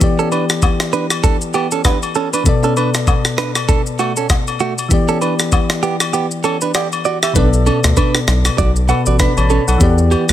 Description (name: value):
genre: afrobeats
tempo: 98 BPM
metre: 4/4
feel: swing 58% on 16ths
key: B minor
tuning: A4 = 442 Hz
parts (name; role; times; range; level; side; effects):
- soft electric-piano-like synth keys; accompaniment; 0.0-10.3 s; B2 to B5; -19 LUFS; left 3 dB; chorus
- jungle sampler-style drum kit; drums; 0.0-10.3 s; kick drum, rim click, shaker; -16 LUFS; equal; none
- direct-recorded clean electric guitar; riff; 0.2-10.3 s; A3 to F#5; -19 LUFS; right 6 dB; warbly pitch drift, ping-pong delay
- agogo bells and woodblock; percussion; 0.3-10.3 s; none; -25 LUFS; left 7 dB; none
- round analog bass; bass; 7.4-10.3 s; A1 to E2; -14 LUFS; equal; none
room: light reverb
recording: none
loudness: -13 LUFS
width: side -12 dB against mid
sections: 0.0-7.4 A section; 7.4-10.3 B section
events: kick muted 6.1-7.4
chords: 0.0 Em7; 2.5 Bm7; 4.9 Em7; 7.4 Bm7; 9.8 Em7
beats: | 0.01 0.62 1.24 1.85 | 2.46 3.07 3.69 4.30 | 4.91 5.52 6.13 6.75 | 7.36 7.97 8.58 9.20 | 9.81